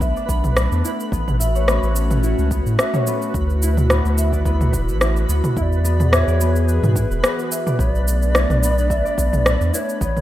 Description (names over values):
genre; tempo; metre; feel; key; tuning
organic downtempo; 108 BPM; 4/4; swing 54% on 16ths; unclear; A4 = 440 Hz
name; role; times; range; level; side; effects
airy breathy pad; sustained chords; 0.0-10.2 s; C#3 to G#4; -26 LUFS; equal; chorus, sidechain pumping
concert harp; arpeggios; 0.0-10.2 s; B3 to E5; -27 LUFS; left 1 dB; digital delay
warm sub bass; bass; 0.0-10.2 s; D1 to A2; -18 LUFS; equal; none
electronic kick drum; drums; 0.0-10.1 s; none; -26 LUFS; equal; overdrive
organic electronic drum kit; drums; 0.0-10.2 s; cabasa, rim click, toms; -21 LUFS; equal; overdrive
twinkling granular texture; texture; 0.0-10.2 s; B4; -33 LUFS; right 2 dB; built-in reverb
breathy bass bansuri; melody; 5.6-10.2 s; B4 to E5; -25 LUFS; right 1 dB; digital delay
room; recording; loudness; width
light reverb; rough home demo mix; -16 LUFS; side -13 dB against mid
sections
0.0-10.2 A section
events
none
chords
0.0 Bm7; 1.1 A69; 3.3 D; 5.6 E13; 7.8 Bm7